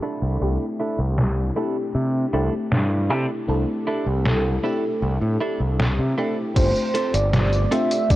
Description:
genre	vaporwave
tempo	78 BPM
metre	4/4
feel	straight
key	C major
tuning	A4 = 440 Hz
part	FM electric piano with soft pad layer	accompaniment	0.0-8.2 s	A3 to A4	-26 LUFS	left 1 dB	phaser, wide subtle chorus, cassette tape, tape echo
part	clean electric guitar	riff	0.0-7.9 s	C4 to A4	-30 LUFS	right 2 dB	wide subtle chorus, tape echo
part	growling fingered electric bass	bass	0.2-8.2 s	G1 to C3	-22 LUFS	equal	overdrive, tube saturation
part	detuned 8-bit digital drum machine	drums	1.2-8.2 s	crash cymbal, hi-hat, snare drum, tambourine	-25 LUFS	equal	overdrive, low-pass filter on snare, vintage 12-bit sampler grit, low-pass filter on hats, low-pass filter on perc, low-pass filter on cymbals, low-pass filter on room
part	warm velvety synth lead	melody	6.6-8.2 s	C5 to E5	-22 LUFS	right 1 dB	chorus, tape echo
part	electronic kick drum	drums	6.6-8.2 s	none	-19 LUFS	equal	overdrive, vintage 12-bit sampler grit
room	light reverb, digital ambience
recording	worn, warbling old tape, cassette tape, warbly pitch drift, low-pass filter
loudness	-20 LUFS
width	side -15 dB against mid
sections	0.0-6.6 A section; 6.6-8.2 B section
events	filter sweep on clean electric guitar 0.0-6.6; filter sweep 0.0-6.6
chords	0.0 C69; 6.6 G9sus4

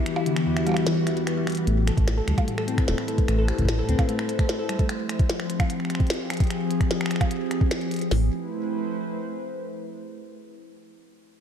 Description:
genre	IDM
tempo	149 BPM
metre	4/4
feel	straight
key	unclear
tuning	A4 = 437 Hz
part	warbly tape-like pad	sustained chords	0.0-9.7 s	E3 to C5	-28 LUFS	left 1 dB	chorus, built-in reverb, phaser, sidechain pumping
part	harp-like synth pluck	arpeggios	0.1-4.8 s	E2 to A4	-27 LUFS	left 1 dB	chorus, digital delay
part	glitchy drum kit	drums	0.1-8.1 s	finger snaps, hi-hat, percussion blips, snare drum	-30 LUFS	equal	overdrive, digital delay
part	round analog bass	bass	1.7-3.9, 8.1-8.3 s	E1 to D2	-22 LUFS	equal	none
part	glitchy drum kit	drums	2.0-8.2 s	hi-hat, kick drum, snare drum	-22 LUFS	equal	overdrive
room	moderate echo chamber reverb, RT60 2.0 s, digital ambience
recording	dark, warm production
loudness	-22 LUFS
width	side -8 dB against mid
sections	0.0-1.7 A section; 1.7-8.1 B section; 8.1-9.7 C section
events	break 0.1-1.7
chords	0.0 Em; 1.7 Am7; 4.9 Fm; 8.1 Am

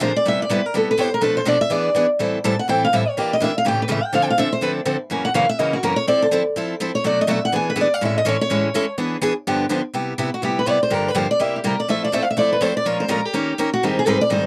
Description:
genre	jazz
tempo	248 BPM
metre	4/4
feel	swing 57% on 8ths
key	unclear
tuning	A4 = 441 Hz
part	picked steel-string acoustic guitar	melody	0.0-14.4 s	F#4 to A5	-22 LUFS	equal	none
part	picked steel-string acoustic guitar	accompaniment	0.0-14.5 s	F#2 to Bb4	-24 LUFS	equal	none
room	light reverb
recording	dry, close 1970s-style studio recording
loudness	-20 LUFS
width	mono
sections	0.0-2.2 A section; 2.2-9.9 A section; 9.9-14.5 A section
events	steel-string acoustic guitar solo 0.0-9.9, 9.9-14.5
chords	0.2 Cmaj7; 1.2 Bm7b5; 1.7 E7; 2.2 Am7; 3.2 Em7b5; 3.6 A7; 4.1 Dm7; 5.1 F#7; 6.1 Fmaj7; 7.0 Bm7; 7.5 E7; 8.0 Amaj7; 9.0 E7; 9.5 G7; 9.9 Cmaj7; 10.9 Gm7; 11.4 C7; 11.9 Fmaj7; 12.9 Bbm7; 13.3 Eb7; 13.8 Abmaj7

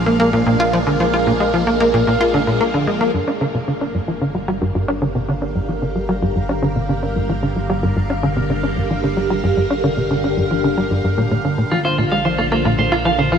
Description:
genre	ambient, sequencer-driven space music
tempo	112 BPM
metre	4/4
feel	straight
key	unclear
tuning	A4 = 439 Hz
part	phased string machine	sustained chords	0.0-13.4 s	D3 to Bb4	-21 LUFS	equal	ensemble chorus, phaser
part	tight sequencer bass	riff	0.0-13.4 s	G2 to F4	-18 LUFS	equal	lush chorus, tape echo
part	fat analog bass	bass	0.0-13.4 s	G1 to Bb1	-28 LUFS	equal	none
part	bubbling stepped-filter texture	texture	0.0-13.4 s	F5	-29 LUFS	right 3 dB	chorus, built-in reverb
part	clean electric guitar	arpeggios	11.7-13.4 s	F4 to F5	-19 LUFS	moving between left 2 dB and right 4 dB	auto-pan, tape echo
room	moderate huge ambient reverb, RT60 7.8 s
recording	none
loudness	-16 LUFS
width	side -7 dB against mid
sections	0.0-3.1 A section; 3.1-13.4 B section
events	fade-in on string machine 3.1-13.4; fade-in on synth texture 3.1-13.4; filter sweep on analog synth bass 3.1-13.4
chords	0.0 Bb7; 3.1 Gm; 11.7 Bb

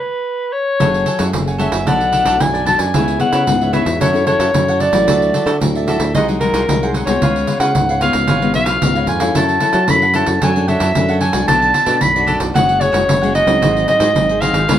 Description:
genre	samba and choro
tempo	112 BPM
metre	4/4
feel	straight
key	F# minor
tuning	A4 = 441 Hz
part	mellow soprano saxophone	melody	0.0-14.8 s	A#4 to B5	-16 LUFS	equal	none
part	cavaquinho	accompaniment	0.8-14.8 s	D4 to G#5	-23 LUFS	right 2 dB	none
part	nylon-string guitar	accompaniment	0.8-14.8 s	F#2 to A4	-21 LUFS	left 4 dB	none
part	fingered electric bass	bass	0.8-14.8 s	F#1 to F#3	-20 LUFS	equal	none
part	pandeiro	percussion	0.8-14.8 s	none	-20 LUFS	right 1 dB	none
room	moderate studio reverb, RT60 0.6 s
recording	band playing live in one room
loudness	-12 LUFS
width	side -10 dB against mid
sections	0.8-14.8 A section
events	band accent 0.0-0.8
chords	0.0 Aadd9 (rootless); 0.8 F#madd9; 1.9 Bm7; 2.9 C#m7; 4.0 F#m7; 5.1 Dadd9; 6.1 G#7/B#; 7.2 C#7; 9.4 F#m7; 10.4 Dmaj7/F#; 11.5 Bm7; 12.6 F#sus2; 13.6 G#7

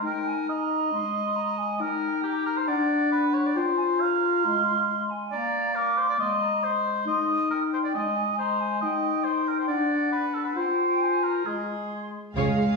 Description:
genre	cinematic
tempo	137 BPM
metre	4/4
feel	straight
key	unclear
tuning	A4 = 440 Hz
part	hollow concert flute	second line	0.0-12.1 s	F#5 to D6	-31 LUFS	equal	none
part	mellow clarinet	second line	0.0-12.1 s	Ab3 to F4	-28 LUFS	left 4 dB	none
part	warm oboe	second line	0.0-12.1 s	G4 to F5	-26 LUFS	right 2 dB	none
part	warm symphonic violin section	melody	12.4-12.8 s	Ab4	-35 LUFS	left 5 dB	none
part	rich symphonic violin section	second line	12.4-12.8 s	F5	-30 LUFS	right 3 dB	none
part	warm symphonic viola section	accompaniment	12.4-12.6 s	Ab4 to Db5	-29 LUFS	right 2 dB	none
part	rich studio double bass section	bass	12.4 s	Db2	-27 LUFS	right 4 dB	none
part	warm studio cello section	bass	12.4-12.8 s	Ab3	-24 LUFS	right 1 dB	none
room	wet recital hall reverb, RT60 1.3 s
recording	recorded in a church or concert hall, small room ambience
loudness	-23 LUFS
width	side -3 dB against mid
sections	0.0-12.4 A section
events	none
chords	0.0 Eb; 0.9 Abadd9; 1.8 Eb; 2.7 D; 3.6 F5; 4.5 Ab; 5.3 Bb; 6.2 Abadd9; 7.1 Eb; 7.9 Abadd9; 8.8 Eb; 9.7 D; 10.6 Fsus2; 11.5 Ab

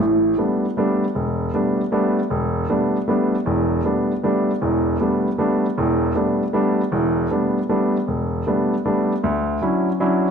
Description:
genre	jazz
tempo	156 BPM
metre	3/4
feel	swing 66% on 8ths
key	unclear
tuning	A4 = 440 Hz
part	clear upright piano	solo	0.0-10.3 s	E1 to E4	-18 LUFS	equal	none
room	moderate large studio reverb, RT60 1.4 s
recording	dark, warm production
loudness	-18 LUFS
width	side -6 dB against mid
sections	0.0-9.2 A section; 9.2-10.3 B section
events	none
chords	0.0 A9sus4; 9.2 Dmaj9

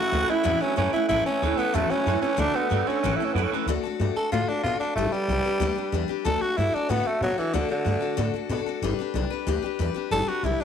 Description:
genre	rock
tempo	186 BPM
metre	4/4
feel	straight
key	D major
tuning	A4 = 439 Hz
part	growling tenor saxophone	melody	0.0-10.6 s	D3 to A4	-25 LUFS	equal	none
part	picked steel-string acoustic guitar	accompaniment	0.0-10.6 s	A2 to B4	-29 LUFS	left 11 dB	none
part	electric guitar through a small old amp	riff	0.0-3.7 s	A2 to A3	-27 LUFS	right 14 dB	ensemble chorus
part	upright bass	bass	0.1-10.6 s	G1 to B2	-28 LUFS	equal	none
room	moderate echo chamber reverb, RT60 2.0 s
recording	1960s-style stereo with parts hard left and right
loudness	-22 LUFS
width	side -8 dB against mid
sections	0.0-3.7 A section; 3.7-10.6 B section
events	tenor saxophone solo 3.7-10.6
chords	0.0 A; 2.4 D; 3.0 A; 3.7 D; 5.0 G; 6.3 D; 8.8 G

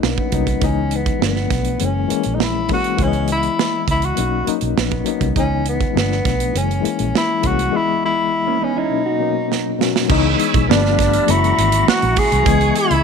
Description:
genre	lush 1970s-style soul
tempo	101 BPM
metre	4/4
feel	straight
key	C# dorian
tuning	A4 = 439 Hz
part	mellow tenor saxophone	melody	0.0-13.0 s	B3 to G#4	-20 LUFS	equal	none
part	bright reed electric piano	accompaniment	0.0-13.0 s	C#2 to D#5	-21 LUFS	left 15 dB	fast tremolo
part	vintage muted fingered electric bass	bass	0.0-13.0 s	F#1 to C#2	-20 LUFS	right 2 dB	none
part	modern studio drum kit	drums	0.0-13.0 s	crash cymbal, hi-hat, kick drum, snare drum	-20 LUFS	right 6 dB	none
part	mellow electric guitar	riff	8.5-9.9 s	A#3 to F#4	-24 LUFS	right 16 dB	none
part	tonewheel organ	sustained chords	10.1-13.0 s	E4 to E6	-23 LUFS	right 2 dB	overdrive, chorus vibrato, slow rotary speaker
room	light reverb, small room ambience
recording	1960s-style stereo with parts hard left and right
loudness	-15 LUFS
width	side -6 dB against mid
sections	0.0-10.1 A section; 10.1-13.0 B section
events	drum fill 9.5-10.1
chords	0.0 Bmaj7; 0.6 C#m7; 1.2 G9; 1.8 F#7; 3.0 C#m7; 4.2 Bmaj7; 5.4 C#m7; 6.0 G9; 6.5 F#7; 7.7 C#m7; 8.9 Bmaj7; 10.1 C#m7; 10.7 G9; 11.3 F#7; 12.5 C#m7

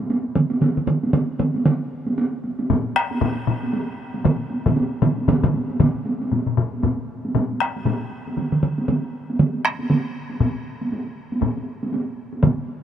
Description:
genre	japanese traditional, taiko drum ensemble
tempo	117 BPM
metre	4/4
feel	swing 60% on 16ths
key	none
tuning	none
part	taiko ensemble	percussion	0.0-12.6 s	none	-24 LUFS	right 2 dB	none
part	taiko ensemble	percussion	0.4-12.6 s	none	-21 LUFS	right 2 dB	none
part	taiko ensemble	percussion	2.7-12.6 s	none	-23 LUFS	left 4 dB	none
room	light reverb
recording	none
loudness	-20 LUFS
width	side -10 dB against mid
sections	0.0-6.3 A section; 6.3-12.8 B section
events	speeding up 0.0-12.8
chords	none

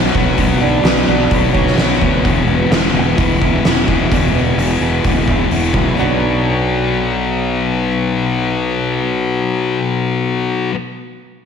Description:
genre	quiet-loud alternative rock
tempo	129 BPM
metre	4/4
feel	straight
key	B minor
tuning	A4 = 443 Hz
part	fingerpicked swing-style acoustic guitar	arpeggios	0.0-10.8 s	E2 to C#5	-22 LUFS	right 6 dB	slapback echo
part	thick fuzz guitar	riff	0.0-10.8 s	E2 to B3	-17 LUFS	left 6 dB	distortion
part	fuzz fingered electric bass	bass	0.0-10.7 s	E1 to D2	-20 LUFS	right 1 dB	overdrive
part	oversized low-tuned drum kit	drums	0.1-5.8 s	hi-hat, kick drum, snare drum	-16 LUFS	equal	none
room	moderate lush hall reverb, RT60 1.8 s, small room ambience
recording	big arena sound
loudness	-13 LUFS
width	side -7 dB against mid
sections	0.0-6.0 A section; 6.0-9.7 B section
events	none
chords	0.0 Bmadd9; 2.2 Eadd9; 6.0 Bmadd9

